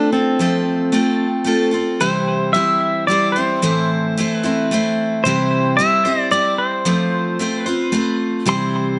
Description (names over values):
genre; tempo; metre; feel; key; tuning
rock; 111 BPM; 3/4; straight; C major; A4 = 441 Hz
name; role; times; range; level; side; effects
pedal steel guitar; melody; 0.0-9.0 s; C4 to C6; -21 LUFS; equal; digital delay
picked steel-string acoustic guitar; accompaniment; 0.0-9.0 s; A2 to C5; -20 LUFS; equal; none
room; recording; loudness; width
moderate echo chamber reverb, RT60 1.4 s, small room ambience; nothing above 10.7 kHz; -18 LUFS; mono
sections
0.0-2.0 A section; 2.0-9.0 B section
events
none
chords
0.0 F; 2.0 C; 3.6 Am; 5.2 C; 6.9 F; 8.5 C